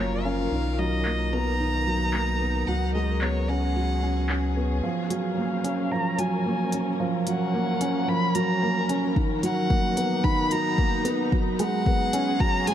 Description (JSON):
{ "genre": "piano and strings electronica", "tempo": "111 BPM", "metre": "4/4", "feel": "straight", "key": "F# major", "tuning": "A4 = 440 Hz", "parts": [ { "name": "warm violin", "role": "melody", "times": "0.0-12.7 s", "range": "C#5 to B5", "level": "-29 LUFS", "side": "equal", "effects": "low-pass filter, shimmer reverb" }, { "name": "rich studio string section", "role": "sustained chords", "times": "0.0-12.7 s", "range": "E#3 to A#4", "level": "-32 LUFS", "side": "left 3 dB", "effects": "sidechain pumping, shimmer reverb" }, { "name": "felt-muted upright piano", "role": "riff", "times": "0.0-12.7 s", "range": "D#3 to C#4", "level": "-26 LUFS", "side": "right 2 dB", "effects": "digital delay, shimmer reverb" }, { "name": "warm sub bass", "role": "bass", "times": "0.0-12.7 s", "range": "F#1 to C#2", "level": "-27 LUFS", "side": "left 1 dB", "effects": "sidechain pumping, high-pass filter" }, { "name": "deep house drum kit", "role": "drums", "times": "1.1-12.7 s", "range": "handclaps, hi-hat", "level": "-35 LUFS", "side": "left 1 dB", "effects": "low-pass filter on snare, low-pass filter on hats" }, { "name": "electronic kick drum", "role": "drums", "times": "9.2-12.5 s", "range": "none", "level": "-24 LUFS", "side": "left 1 dB", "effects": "none" } ], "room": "moderate huge ambient reverb, RT60 7.9 s", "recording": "dark, warm production", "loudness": "-22 LUFS", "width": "side -10 dB against mid", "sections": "0.0-4.8 A section; 4.8-12.7 B section", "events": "build-up 4.8-12.7; filter sweep on violin 4.8-12.7", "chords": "0.0 F#maj7; 0.5 Bmaj7; 2.7 C#7sus4; 4.8 F#maj7; 9.2 Bmaj7; 11.3 C#7sus4" }